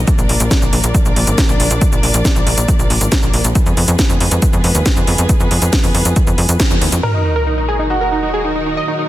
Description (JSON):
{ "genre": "uplifting trance", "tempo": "138 BPM", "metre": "4/4", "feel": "straight", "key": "Eb harmonic minor", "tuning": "A4 = 440 Hz", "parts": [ { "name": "dark studio string section", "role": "sustained chords", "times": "0.0-9.1 s", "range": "Bb2 to D5", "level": "-22 LUFS", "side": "left 1 dB", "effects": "sidechain pumping" }, { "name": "tight sequencer bass", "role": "bass", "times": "0.0-7.0 s", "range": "Ab1 to F2", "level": "-16 LUFS", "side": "equal", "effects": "sidechain pumping" }, { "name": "electronic kick drum", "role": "drums", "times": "0.1-6.7 s", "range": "none", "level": "-15 LUFS", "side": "equal", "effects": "overdrive" }, { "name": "house drum kit", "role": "drums", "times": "0.1-7.1 s", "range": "crash cymbal, hi-hat, shaker, snare drum", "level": "-18 LUFS", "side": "equal", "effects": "overdrive, low-pass filter on hats, low-pass filter on perc, low-pass filter on snare, low-pass filter on cymbals, low-pass filter on room" }, { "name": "dense compressed supersaw", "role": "melody", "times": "7.0-9.1 s", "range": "Eb4 to Eb5", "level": "-19 LUFS", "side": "right 1 dB", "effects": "sidechain pumping, low-pass filter, digital delay" }, { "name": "clear grand piano", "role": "second line", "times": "7.0-8.5 s", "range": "Gb4 to Bb4", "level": "-22 LUFS", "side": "right 2 dB", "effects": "digital delay" }, { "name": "supersaw stab", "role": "second line", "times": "7.0-9.1 s", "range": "Eb4 to Eb5", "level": "-24 LUFS", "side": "right 1 dB", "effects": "cassette tape, sidechain pumping, low-pass filter, digital delay" }, { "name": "sub drop", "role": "sound effects", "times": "7.0-8.8 s", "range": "none", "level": "-20 LUFS", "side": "equal", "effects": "none" } ], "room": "light reverb, digital ambience", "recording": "dense, heavily limited modern master", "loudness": "-12 LUFS", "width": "side -14 dB against mid", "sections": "0.0-7.0 A section; 7.0-9.1 B section", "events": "band accent 6.6; impact 7.0-8.8", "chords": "0.1 Bb; 3.6 Fdim; 7.0 Ebm" }